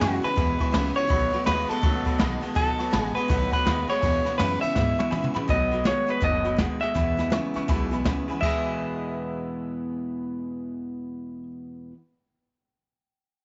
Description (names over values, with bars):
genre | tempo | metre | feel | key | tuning
rockabilly | 164 BPM | 4/4 | swing 63% on 8ths | E major | A4 = 442 Hz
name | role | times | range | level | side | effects
electric guitar through a small old amp | melody | 0.0-11.4 s | G#4 to E5 | -29 LUFS | equal | tape echo
honky-tonk upright piano | accompaniment | 0.0-11.5 s | D#5 to C#6 | -39 LUFS | equal | none
picked steel-string acoustic guitar | accompaniment | 0.0-12.0 s | E2 to F#4 | -37 LUFS | equal | none
electric guitar through a small old amp | riff | 0.0-11.9 s | E2 to G#4 | -33 LUFS | equal | none
upright bass | bass | 0.0-11.5 s | F#1 to A#2 | -33 LUFS | equal | none
jazz brush drum kit | drums | 0.0-8.5 s | crash cymbal, hi-hat, kick drum, ride cymbal, snare drum, toms | -30 LUFS | equal | none
room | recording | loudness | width
light reverb, small room ambience | nothing above 7.8 kHz | -25 LUFS | mono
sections
0.0-5.5 A section; 5.5-8.4 B section; 8.4-11.3 C section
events
drum fill 4.8-5.5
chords
0.0 E; 1.1 B7; 4.0 E; 5.5 B7; 7.0 E